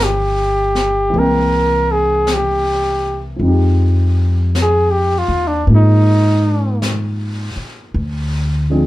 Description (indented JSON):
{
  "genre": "jazz ballad",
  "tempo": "53 BPM",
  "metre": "4/4",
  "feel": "swing 66% on 8ths",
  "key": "F minor",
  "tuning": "A4 = 444 Hz",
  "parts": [
    { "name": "mellow trumpet", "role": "melody", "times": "0.0-6.8 s", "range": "D4 to Bb4", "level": "-16 LUFS", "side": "equal", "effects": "none" },
    { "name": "dark concert grand piano", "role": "accompaniment", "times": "0.0-8.9 s", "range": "E3 to G5", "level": "-22 LUFS", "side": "equal", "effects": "none" },
    { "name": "upright bass", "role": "bass", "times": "0.0-8.9 s", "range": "G1 to Ab2", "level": "-16 LUFS", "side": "equal", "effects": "none" },
    { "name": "jazz brush drum kit", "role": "drums", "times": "0.8-8.9 s", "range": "brushed snare drum, hi-hat, snare drum", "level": "-28 LUFS", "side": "left 2 dB", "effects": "none" }
  ],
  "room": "moderate studio ambience, RT60 0.5 s",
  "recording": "band playing live in one room",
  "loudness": "-13 LUFS",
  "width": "side -16 dB against mid",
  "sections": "0.0-3.4 A section; 3.4-8.9 B section",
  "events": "trumpet solo 3.4-8.9",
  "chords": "0.0 Gm7b5; 1.1 C7b13; 3.4 Fm9; 7.9 Dm7b5"
}